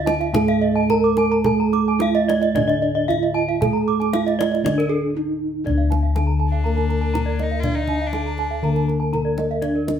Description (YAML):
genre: Balinese gamelan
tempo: 108-121 BPM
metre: 4/4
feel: straight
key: D pelog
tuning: A4 = 440 Hz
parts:
  - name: gamelan-type bronze metallophone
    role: melody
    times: 0.0-10.0 s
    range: D4 to Bb4-40c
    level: -24 LUFS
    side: right 2 dB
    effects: none
  - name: gamelan-type bronze metallophone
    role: accompaniment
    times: 0.0-10.0 s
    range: D3 to Bb3-40c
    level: -24 LUFS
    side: right 3 dB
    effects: none
  - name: gamelan-type bronze metallophone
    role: arpeggios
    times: 0.0-10.0 s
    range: A4-45c to D6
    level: -26 LUFS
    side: right 4 dB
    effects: none
  - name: gamelan-type bossed gongs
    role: bass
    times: 0.0-10.0 s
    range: D2 to A4-45c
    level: -24 LUFS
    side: left 2 dB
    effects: none
  - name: gamelan-type bronze metallophone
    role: arpeggios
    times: 0.1-9.7 s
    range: Bb4-40c to Bb5-40c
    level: -26 LUFS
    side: equal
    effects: none
  - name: kendang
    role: percussion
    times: 0.1-10.0 s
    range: none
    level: -28 LUFS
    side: left 1 dB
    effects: none
  - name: clear fiddle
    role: second line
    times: 6.5-8.9 s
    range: D4 to F4-46c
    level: -31 LUFS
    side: left 2 dB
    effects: none
room: moderate stone room reverb, RT60 1.0 s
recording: band playing live in one room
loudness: -18 LUFS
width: side -8 dB against mid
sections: 0.0-5.7 A section; 5.7-10.0 B section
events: break 4.9-5.7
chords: none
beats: 0.34 0.90 | 1.46 2.01 2.55 3.09 | 3.62 4.13 4.65 5.15 | 5.65 6.15 6.65 7.14 | 7.64 8.13 8.63 9.13 | 9.62